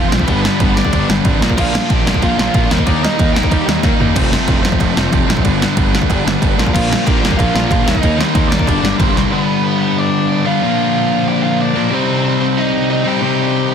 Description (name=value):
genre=punk rock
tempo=185 BPM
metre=4/4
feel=straight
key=unclear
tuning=A4 = 439 Hz
part: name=biting overdriven guitar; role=melody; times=0.0-3.6, 6.7-13.7 s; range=B3 to G5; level=-20 LUFS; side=right 2 dB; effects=none
part: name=distorted electric guitar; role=riff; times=0.0-13.7 s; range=F2 to Eb4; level=-19 LUFS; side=right 16 dB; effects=overdrive
part: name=sludgy distorted guitar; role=riff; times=0.0-13.7 s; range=F2 to Eb4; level=-17 LUFS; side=left 13 dB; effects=overdrive
part: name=fuzz picked electric bass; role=bass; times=0.0-9.3 s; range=F1 to Eb2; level=-20 LUFS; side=right 1 dB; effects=overdrive
part: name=punchy analog drum machine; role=drums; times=0.1-9.2 s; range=crash cymbal, kick drum, ride cymbal, snare drum, toms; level=-15 LUFS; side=right 1 dB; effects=none
room=little or no reverb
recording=dense, heavily limited modern master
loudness=-12 LUFS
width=side -7 dB against mid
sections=0.0-9.3 A section; 9.3-13.7 B section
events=drum fill 3.8-4.2, 9.2; half time 9.3-13.7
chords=0.3 G; 1.4 Bb; 2.7 Eb; 4.2 F; 5.5 G; 6.6 Bb; 7.9 Eb; 8.7 Gm; 9.3 G; 10.6 Bb; 11.9 Cm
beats=| 0.27 0.60 0.92 1.25 | 1.57 1.90 2.22 2.55 | 2.87 3.19 3.52 3.84 | 4.16 4.49 4.81 5.13 | 5.45 5.78 6.10 6.42 | 6.74 7.07 7.39 7.71 | 8.03 8.36 8.68 9.00 | 9.32 9.65 9.97 10.30 | 10.62 10.95 11.27 11.60 | 11.92 12.24 12.57 12.89 | 13.22 13.55